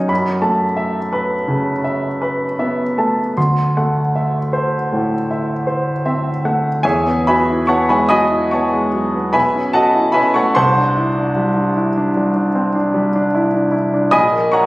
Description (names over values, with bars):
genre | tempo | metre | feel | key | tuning
classical, impressionist solo piano | 47-59 BPM (dotted quarters) | 9/8 | rubato | unclear | A4 = 440 Hz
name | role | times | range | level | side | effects
clear concert grand piano | solo | 0.0-14.7 s | A#1 to D#6 | -14 LUFS | equal | none
room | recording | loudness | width
wet recital hall reverb, RT60 1.8 s | recorded on a phone in the room, studio reverb, compression | -14 LUFS | side -19 dB against mid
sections
0.0-6.8 A section; 6.8-14.7 B section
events
none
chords
0.1 F#m7; 3.4 D9; 6.8 E69; 9.3 B9sus4; 10.6 Cadd9; 14.1 A#m7